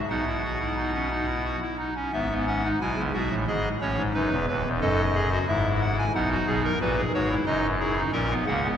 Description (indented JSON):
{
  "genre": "classical, baroque-style 3-part fugue for pipe organ",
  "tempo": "90 BPM",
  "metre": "3/4",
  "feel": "straight",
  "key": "E major",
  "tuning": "A4 = 440 Hz",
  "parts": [
    { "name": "pipe organ, clarinet reed", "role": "solo", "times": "0.1-8.8 s", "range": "D#1 to G#5", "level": "-23 LUFS", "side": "equal", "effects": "none" }
  ],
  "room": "wet cathedral reverb, RT60 6.2 s",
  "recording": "none",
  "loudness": "-23 LUFS",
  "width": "side -9 dB against mid",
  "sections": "0.0-2.1 A section; 2.1-8.8 B section",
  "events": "none",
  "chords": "0.1 B; 2.1 E/G#; 3.5 G#5; 4.2 B7; 5.5 E/G#; 6.1 B; 7.5 D#m/F#; 8.1 F#/A#",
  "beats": "| 0.10 0.78 1.46 | 2.14 2.82 3.49 | 4.16 4.82 5.48 | 6.15 6.81 7.47 | 8.14"
}